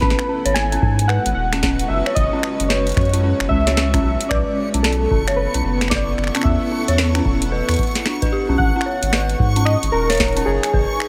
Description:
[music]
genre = IDM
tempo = 112 BPM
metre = 4/4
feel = swing 62% on 16ths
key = unclear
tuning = A4 = 440 Hz
[part]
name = warbly lo-fi synth keys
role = melody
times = 0.0-11.1 s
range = G#4 to G#5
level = -25 LUFS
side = equal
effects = chorus, digital delay
[part]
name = granular cloud pad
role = sustained chords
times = 0.0-11.1 s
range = G#3 to F#5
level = -30 LUFS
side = equal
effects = built-in reverb
[part]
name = dark detuned synth bell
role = arpeggios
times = 0.0-10.8 s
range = C#4 to C#5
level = -26 LUFS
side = equal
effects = chorus, phaser, vintage 12-bit sampler grit, tape echo
[part]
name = warm sub bass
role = bass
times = 0.0-10.9 s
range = D#1 to G#2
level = -23 LUFS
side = equal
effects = none
[part]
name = booming analog drum machine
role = drums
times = 0.0-11.1 s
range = finger snaps, hi-hat, snare drum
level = -25 LUFS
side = equal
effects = none
[part]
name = electronic kick drum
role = drums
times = 0.0-10.9 s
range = none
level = -24 LUFS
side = equal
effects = none
[part]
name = backwards swelling texture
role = texture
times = 1.4-11.1 s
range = C#6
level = -34 LUFS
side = equal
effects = built-in reverb
[sound]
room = little or no reverb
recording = none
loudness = -18 LUFS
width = mono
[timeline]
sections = 0.0-11.1 A section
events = none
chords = 0.0 G#m7; 1.9 F#9sus4; 4.0 Bm11; 6.4 Esus4; 8.6 G#9sus4; 10.5 F#7sus2

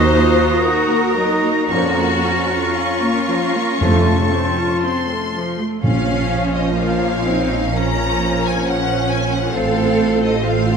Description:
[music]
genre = classical, slow romantic movement for symphony orchestra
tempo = 55-69 BPM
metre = 4/4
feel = rubato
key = Bb minor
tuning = A4 = 440 Hz
[part]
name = rich symphonic violin section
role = melody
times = 0.0-10.8 s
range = Eb5 to Db6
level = -25 LUFS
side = left 4 dB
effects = none
[part]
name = clear oboe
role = second line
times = 0.0-5.5 s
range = A5 to Bb5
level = -24 LUFS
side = equal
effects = none
[part]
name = mellow hollow flute section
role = second line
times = 0.0-5.5 s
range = C6 to Eb6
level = -27 LUFS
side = right 2 dB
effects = none
[part]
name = rich symphonic violin section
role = second line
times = 0.0-10.8 s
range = Db4 to Db5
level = -24 LUFS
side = left 2 dB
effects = none
[part]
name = warm clarinet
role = second line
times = 0.0-5.5 s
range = F4 to Gb4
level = -25 LUFS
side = left 2 dB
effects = none
[part]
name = clear symphonic viola section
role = accompaniment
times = 0.0-10.8 s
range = F3 to Gb4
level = -21 LUFS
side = equal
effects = none
[part]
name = dark trombone section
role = sustained chords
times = 0.0-4.2 s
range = Bb2 to F3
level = -27 LUFS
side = right 4 dB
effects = none
[part]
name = warm French horn section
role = sustained chords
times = 0.0-4.2 s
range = A3 to F4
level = -27 LUFS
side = left 4 dB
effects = none
[part]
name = clear symphonic double bass section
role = bass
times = 0.0-10.8 s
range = A1 to F2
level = -22 LUFS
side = right 4 dB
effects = none
[part]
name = rich symphonic cello section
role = bass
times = 0.0-10.8 s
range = Db4 to A4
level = -24 LUFS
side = right 2 dB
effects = none
[part]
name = timpani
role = percussion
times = 3.8-7.2 s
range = F2 to Bb2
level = -22 LUFS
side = equal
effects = none
[sound]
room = wet concert hall reverb, RT60 1.9 s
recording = none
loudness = -15 LUFS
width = side -6 dB against mid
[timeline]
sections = 0.0-5.8 A section; 5.8-10.8 B section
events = none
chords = 0.0 Ebm; 1.7 Bbm/F; 3.8 F; 5.8 Bbm; 9.5 F/A

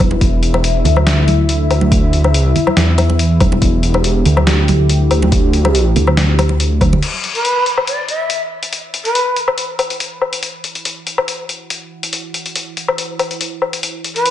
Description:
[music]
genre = deep dubstep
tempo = 141 BPM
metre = 4/4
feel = swing 53% on 16ths, half-time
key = E minor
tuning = A4 = 440 Hz
[part]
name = dark analog pad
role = sustained chords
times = 0.0-14.3 s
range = E4 to F#5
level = -22 LUFS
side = left 2 dB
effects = chorus
[part]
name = dark detuned saw bass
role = bass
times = 0.0-7.0 s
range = E1 to E2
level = -13 LUFS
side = equal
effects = none
[part]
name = electronic kick drum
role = drums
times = 0.0-6.9 s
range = none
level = -15 LUFS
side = equal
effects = overdrive, small room ambience
[part]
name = trip hop sampler-style drum kit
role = drums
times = 0.0-14.3 s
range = crash cymbal, hi-hat, snare drum, woodblock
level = -18 LUFS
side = left 3 dB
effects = small room ambience
[part]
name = congas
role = percussion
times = 0.0-7.0 s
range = none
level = -21 LUFS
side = right 4 dB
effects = dub echo
[part]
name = breathy shakuhachi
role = melody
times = 7.3-9.4, 14.2-14.3 s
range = B4 to E5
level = -18 LUFS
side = equal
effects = dub echo
[sound]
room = little or no reverb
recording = nothing above 10.8 kHz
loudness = -13 LUFS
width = side -11 dB against mid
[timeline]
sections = 0.0-7.0 A section; 7.0-14.3 B section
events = filter sweep on analog synth pad 7.0-14.3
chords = 0.0 E5; 7.0 Esus2

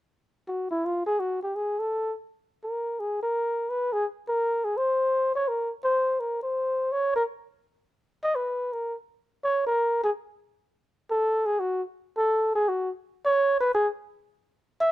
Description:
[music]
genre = jazz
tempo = 167 BPM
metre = 3/4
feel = swing 65% on 8ths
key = Bb minor, F# minor from 10.9 s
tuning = A4 = 441 Hz
[part]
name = mellow flugelhorn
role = solo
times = 0.5-14.9 s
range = E4 to E5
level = -24 LUFS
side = equal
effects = none
[sound]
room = light reverb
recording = close, detailed microphones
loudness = -24 LUFS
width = side -15 dB against mid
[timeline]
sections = 0.1-2.3 A section; 2.3-10.9 B section; 10.9-14.9 C section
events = none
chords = none

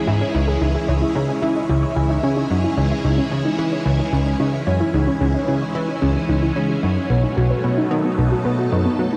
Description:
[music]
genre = ambient, sequencer-driven space music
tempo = 111 BPM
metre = 4/4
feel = straight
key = C# minor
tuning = A4 = 439 Hz
[part]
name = phased string machine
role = sustained chords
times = 0.0-9.2 s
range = E3 to A4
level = -26 LUFS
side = equal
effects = ensemble chorus, phaser
[part]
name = warbly dusty pluck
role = arpeggios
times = 0.0-9.2 s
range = B3 to C#5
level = -26 LUFS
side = equal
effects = chorus, delay
[part]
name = plucky analog bass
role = riff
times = 0.1-9.1 s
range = B1 to F#3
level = -22 LUFS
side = equal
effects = subtle chorus, cassette tape, delay
[sound]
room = wet huge ambient reverb, RT60 7.1 s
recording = dark, warm production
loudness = -19 LUFS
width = mono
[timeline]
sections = 0.0-9.2 A section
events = none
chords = 0.0 C#madd9; 7.1 B7

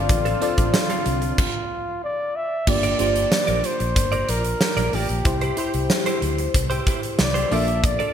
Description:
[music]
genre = 1980s-style pop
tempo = 93 BPM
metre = 4/4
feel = straight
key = G dorian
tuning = A4 = 440 Hz
[part]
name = breathy flugelhorn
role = melody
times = 0.0-8.1 s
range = F4 to E5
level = -25 LUFS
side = equal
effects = none
[part]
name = FM electric piano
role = accompaniment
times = 0.0-8.1 s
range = Bb3 to D5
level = -26 LUFS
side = left 1 dB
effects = chorus, phaser
[part]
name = lush unison pad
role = sustained chords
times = 0.0-1.4 s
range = D3 to F4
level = -35 LUFS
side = right 2 dB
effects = none
[part]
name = vintage muted fingered electric bass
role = bass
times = 0.0-8.0 s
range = G1 to D2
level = -25 LUFS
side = equal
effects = none
[part]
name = direct-recorded clean electric guitar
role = riff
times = 0.1-8.1 s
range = C4 to D5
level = -30 LUFS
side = right 3 dB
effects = ensemble chorus, ping-pong delay
[part]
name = huge arena drum kit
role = drums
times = 0.1-8.1 s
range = crash cymbal, hi-hat, kick drum, snare drum, tambourine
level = -23 LUFS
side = right 1 dB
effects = gated reverb
[sound]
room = moderate lush hall reverb, RT60 2.0 s, small room ambience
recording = bright 1980s-style digital production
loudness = -19 LUFS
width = side -9 dB against mid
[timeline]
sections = 0.0-2.7 A section; 2.7-8.1 A section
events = stop 1.4-2.7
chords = 0.0 Dm7; 2.7 Gm7; 5.3 C; 7.5 Bbmaj7

